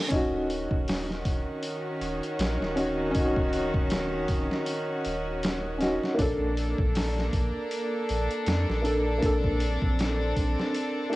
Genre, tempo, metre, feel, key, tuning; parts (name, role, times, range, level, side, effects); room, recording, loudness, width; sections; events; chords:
trip hop; 79 BPM; 4/4; swing 56% on 16ths; A4 = 439 Hz
warm upright piano; accompaniment; 0.0-11.2 s; Bb3 to A4; -30 LUFS; equal; tremolo, cassette tape, tape echo
rich chamber string section; sustained chords; 0.1-11.2 s; Eb3 to A4; -31 LUFS; equal; cassette tape
warm sub bass; bass; 0.1-10.6 s; Eb1 to F2; -31 LUFS; equal
trip hop sampler-style drum kit; drums; 0.1-11.2 s; hi-hat, kick drum, snare drum; -29 LUFS; equal; cassette tape
little or no reverb; home recording on cassette; -25 LUFS; side -18 dB against mid
0.1-11.2 A section
0.1 Ebm7; 6.2 Bbmaj7